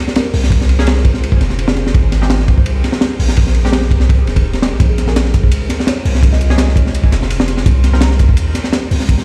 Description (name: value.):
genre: drum and bass, jungle.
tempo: 168 BPM.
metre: 4/4.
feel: swing 53% on 16ths.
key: Bb dorian.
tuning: A4 = 439 Hz.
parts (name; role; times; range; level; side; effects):
crunchy breakbeat drum kit; drums; 0.1-9.2 s; hi-hat, kick drum, ride cymbal, snare drum; -16 LUFS; equal; none.
kalimba; melody; 0.2-1.9, 4.9-7.0 s; Ab4 to Eb5; -32 LUFS; equal; dub echo.
long sustained 808-style bass; bass; 0.3-9.2 s; Eb1 to Eb2; -16 LUFS; equal; none.
filtered dub chord stab; stabs; 0.8-8.0 s; Ab3 to Bb4; -30 LUFS; equal; chorus, dub echo.
breakbeat sampler-style drum kit; drums; 4.8-9.2 s; hi-hat, snare drum; -33 LUFS; equal; high-pass filter on hats, high-pass filter on snare.
room: studio reverb.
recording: played on a big sound system in a bare room, stone room reverb.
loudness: -13 LUFS.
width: mono.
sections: 0.0-9.2 A section.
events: none.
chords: 0.0 Bbm7; 1.9 Abmaj7; 4.8 Bbm7; 7.7 Cm7.